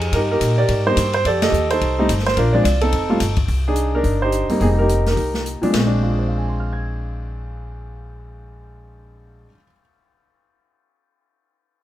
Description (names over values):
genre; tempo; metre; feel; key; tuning
jazz piano trio; 214 BPM; 4/4; swing 60% on 8ths; Bb mixolydian; A4 = 439 Hz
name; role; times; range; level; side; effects
warm baby grand piano; melody; 0.0-9.8 s; Bb2 to Ab6; -19 LUFS; right 1 dB; none
upright bass; bass; 0.0-9.4 s; F1 to Bb2; -21 LUFS; equal; none
open jazz drum kit; drums; 0.0-5.8 s; hi-hat, kick drum, ride cymbal, snare drum; -26 LUFS; left 2 dB; none
room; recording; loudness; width
light reverb; none; -16 LUFS; side -13 dB against mid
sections
0.0-3.5 A section; 3.5-5.7 B section; 5.7-8.0 C section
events
band accent 1.4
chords
0.0 Cm7; 1.3 F9; 2.4 Bbadd9; 2.9 F9; 3.5 Cm9; 4.6 F9sus4; 5.7 Bb9